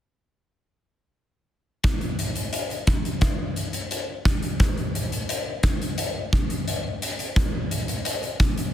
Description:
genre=pop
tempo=87 BPM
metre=4/4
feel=straight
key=none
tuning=none
part: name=huge arena drum kit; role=drums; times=1.8-8.7 s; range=hi-hat, kick drum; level=-23 LUFS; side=equal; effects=none
room=little or no reverb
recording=dense, heavily limited modern master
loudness=-23 LUFS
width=side -11 dB against mid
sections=1.8-8.7 A section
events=none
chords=none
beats=| 1.84 2.53 3.22 3.92 | 4.61 5.30 5.99 6.68 | 7.37 8.06

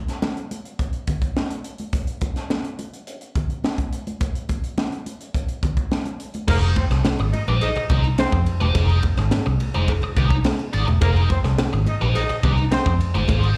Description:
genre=funk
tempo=106 BPM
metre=4/4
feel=straight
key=F minor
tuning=A4 = 438 Hz
part: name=crisp fusion drum kit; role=drums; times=0.1-13.6 s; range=crash cymbal, hi-hat, kick drum, ride cymbal, snare drum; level=-26 LUFS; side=equal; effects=none
part: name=congas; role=percussion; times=0.2-13.4 s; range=none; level=-33 LUFS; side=equal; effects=slapback echo
part: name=clear horn section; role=second line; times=6.5-12.9 s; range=Bb3 to Eb5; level=-29 LUFS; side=equal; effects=slapback echo
part: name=biting overdriven guitar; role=accompaniment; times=6.5-13.6 s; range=Eb4 to D5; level=-29 LUFS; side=equal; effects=wah, slapback echo
part: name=vintage muted fingered electric bass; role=bass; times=6.5-13.5 s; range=E1 to F2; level=-22 LUFS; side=equal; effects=none
part: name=cowbell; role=percussion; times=6.5-13.4 s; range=none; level=-37 LUFS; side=equal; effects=slapback echo
room=light reverb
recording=live gig heard through the venue's PA, club reverb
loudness=-22 LUFS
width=mono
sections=0.0-6.5 A section; 6.5-13.6 B section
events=none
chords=0.0 N.C.; 6.5 Fm7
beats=0.23 0.80 1.37 | 1.94 2.50 3.07 3.64 | 4.21 4.78 5.35 5.92 | 6.48 7.05 7.62 8.18 | 8.75 9.32 9.88 10.45 | 11.02 11.58 12.15 12.72 | 13.29

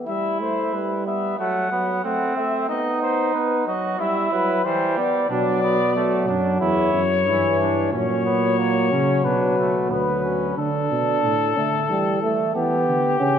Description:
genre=classical, imitative canzona for brass ensemble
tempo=92 BPM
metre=4/4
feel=straight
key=E minor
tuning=A4 = 440 Hz
part: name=warm euphonium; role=accompaniment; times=0.0-13.4 s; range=E3 to D4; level=-24 LUFS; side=right 2 dB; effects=none
part: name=mellow trumpet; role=melody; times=0.1-13.4 s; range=G4 to F#5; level=-23 LUFS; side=left 6 dB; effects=none
part: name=warm flugelhorn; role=second line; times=0.1-10.6 s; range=G3 to F#4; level=-25 LUFS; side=right 4 dB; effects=none
part: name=mellow tuba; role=bass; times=5.3-13.4 s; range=D2 to E3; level=-24 LUFS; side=right 3 dB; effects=none
room=wet concert hall reverb, RT60 2.2 s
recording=none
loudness=-19 LUFS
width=side -8 dB against mid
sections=0.1-10.6 A section; 10.6-13.4 B section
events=none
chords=0.1 Em/G; 1.4 F#dim; 2.7 B; 4.0 Em; 5.3 Bm; 6.6 C#dim/E; 7.9 F#/A#; 9.2 Bm; 10.6 D5; 11.9 Em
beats=| 0.07 0.73 1.39 2.04 | 2.69 3.34 3.99 4.65 | 5.30 5.95 6.61 7.26 | 7.93 8.59 9.25 9.91 | 10.58 11.24 11.90 12.55 | 13.21

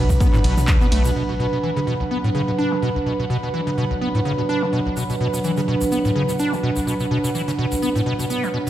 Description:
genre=acid house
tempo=126 BPM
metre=4/4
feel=swing 55% on 16ths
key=unclear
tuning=A4 = 440 Hz
part: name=warm analog pad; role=sustained chords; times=0.0-8.7 s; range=F#3 to B4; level=-25 LUFS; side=right 1 dB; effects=chorus, sidechain pumping
part: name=acid bass, square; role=riff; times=0.0-8.7 s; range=B1 to D4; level=-22 LUFS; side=equal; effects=overdrive, analog chorus, sidechain pumping, tape echo
part: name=saturated sub bass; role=bass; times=0.0-1.1 s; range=B1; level=-20 LUFS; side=equal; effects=tube saturation, sidechain pumping
part: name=airy breathy pad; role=texture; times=0.0-8.7 s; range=D4 to B5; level=-27 LUFS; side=right 2 dB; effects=chorus, sidechain pumping
part: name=electronic kick drum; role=drums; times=0.1-0.8 s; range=none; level=-17 LUFS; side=equal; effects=none
part: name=egg shaker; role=percussion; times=0.1-1.1, 5.0-8.7 s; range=none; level=-35 LUFS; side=equal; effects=none
part: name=punchy analog drum machine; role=drums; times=0.2-1.0 s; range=handclaps, hi-hat, ride cymbal, toms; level=-27 LUFS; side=right 1 dB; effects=none
room=moderate studio reverb, RT60 0.5 s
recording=played on a big sound system in a bare room, large studio reverb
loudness=-18 LUFS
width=side -12 dB against mid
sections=0.0-1.2 A section; 1.2-8.7 B section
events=drop 0.0-1.2; filter sweep on analog synth pad 1.2-8.7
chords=0.0 Bm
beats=0.20 0.68 | 1.16 1.63 2.11 2.58 | 3.06 3.54 4.01 4.49 | 4.97 5.44 5.92 6.39 | 6.87 7.35 7.82 8.30

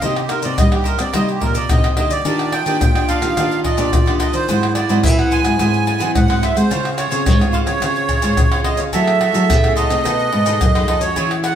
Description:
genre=samba and choro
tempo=108 BPM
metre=4/4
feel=straight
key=unclear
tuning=A4 = 441 Hz
part: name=accordion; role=melody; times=0.0-11.6 s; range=G4 to Ab5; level=-20 LUFS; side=right 4 dB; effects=light tremolo tuning
part: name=cavaquinho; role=accompaniment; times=0.0-11.6 s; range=D4 to Gb5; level=-26 LUFS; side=right 3 dB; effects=none
part: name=nylon-string guitar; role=accompaniment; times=0.0-11.6 s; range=F#2 to Ab4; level=-25 LUFS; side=left 3 dB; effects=none
part: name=nylon-string guitar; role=bass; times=0.0-11.5 s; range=F2 to C4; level=-21 LUFS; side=equal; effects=none
part: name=maracas, surdo, pandeiro, tamborim and agogo bells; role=percussion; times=0.0-11.6 s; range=none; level=-18 LUFS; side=left 1 dB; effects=none
part: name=mellow clarinet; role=second line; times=2.3-11.6 s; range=E4 to B4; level=-25 LUFS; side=right 2 dB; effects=none
room=wet large studio reverb, RT60 0.9 s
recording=band playing live in one room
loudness=-14 LUFS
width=side -9 dB against mid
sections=0.0-2.3 A section; 2.3-11.6 B section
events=accordion solo 0.0-2.3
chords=0.0 Cm7; 2.3 Ebmaj7; 4.5 Abaug7; 6.7 Dbmaj7; 8.9 Gbm9; 10.1 B13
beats=| 0.03 0.59 1.14 1.70 | 2.26 2.81 3.37 3.93 | 4.48 5.04 5.60 6.15 | 6.71 7.27 7.82 8.38 | 8.94 9.49 10.05 10.61 | 11.16

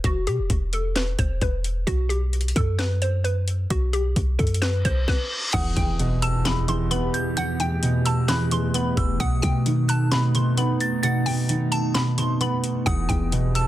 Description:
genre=hip hop, trap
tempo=131 BPM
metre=4/4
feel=half-time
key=E harmonic minor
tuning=A4 = 443 Hz
part: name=hollow square pluck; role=melody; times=0.0-13.7 s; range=F#4 to C6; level=-29 LUFS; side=left 1 dB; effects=chorus, digital delay
part: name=clean 808-style bass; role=bass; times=0.0-13.7 s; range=E1 to B2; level=-24 LUFS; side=equal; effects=none
part: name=trap drum kit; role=drums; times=0.0-13.7 s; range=crash cymbal, handclaps, hi-hat, kick drum, snare drum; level=-26 LUFS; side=equal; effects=none
part: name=reverse cymbal and impact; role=sound effects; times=4.8-7.4 s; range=none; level=-32 LUFS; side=left 1 dB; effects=none
part: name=delicate synth tine bell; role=second line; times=5.5-13.7 s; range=A5 to A6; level=-32 LUFS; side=right 1 dB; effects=chorus, digital delay
part: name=felt-muted upright piano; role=accompaniment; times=5.5-13.7 s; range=E2 to B3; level=-24 LUFS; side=right 1 dB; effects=none
part: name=warbly tape-like pad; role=sustained chords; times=6.1-13.7 s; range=E3 to G4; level=-30 LUFS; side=equal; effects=chorus, built-in reverb, phaser
room=little or no reverb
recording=dense, heavily limited modern master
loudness=-20 LUFS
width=side -14 dB against mid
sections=0.0-5.5 A section; 5.5-13.7 B section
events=reverse cymbal 4.8-5.5; stop 5.1-5.5; impact 5.5-7.4; kick muted 11.9-12.9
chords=0.0 Em; 1.9 B5; 5.5 Em; 9.2 B7; 12.9 Em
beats=| 0.04 0.50 0.96 1.42 | 1.87 2.33 2.79 3.25 | 3.71 4.16 4.62 5.08 | 5.54 6.00 6.45 6.91 | 7.37 7.83 8.29 8.74 | 9.20 9.66 10.12 10.57 | 11.03 11.49 11.95 12.41 | 12.87 13.32

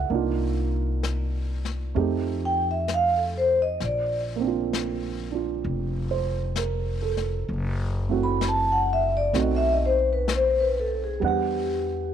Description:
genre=jazz ballad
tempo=65 BPM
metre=4/4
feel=swing 66% on 8ths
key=unclear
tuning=A4 = 439 Hz
part: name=dark concert grand piano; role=accompaniment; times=0.0-12.1 s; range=G3 to F#5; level=-28 LUFS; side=right 10 dB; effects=none
part: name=upright bass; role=bass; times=0.0-12.1 s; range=F1 to F2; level=-28 LUFS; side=left 1 dB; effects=none
part: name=jazz brush drum kit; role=drums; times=0.1-12.1 s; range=brushed snare drum, hi-hat, snare drum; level=-36 LUFS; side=left 10 dB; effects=none
part: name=vibraphone with soft mallets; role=melody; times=2.5-12.1 s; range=G4 to B5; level=-23 LUFS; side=left 1 dB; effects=none
room=studio ambience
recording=1960s-style stereo with parts hard left and right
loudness=-23 LUFS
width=side -9 dB against mid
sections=0.0-12.1 A section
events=vibraphone solo 0.0-12.1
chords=0.1 Cm11; 2.0 F9; 3.8 Bb; 7.5 F#m7b5; 9.3 B7b9; 11.2 Em7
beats=| 0.10 1.03 1.96 2.88 | 3.80 4.72 5.64 6.56 | 7.48 8.41 9.34 10.28 | 11.22

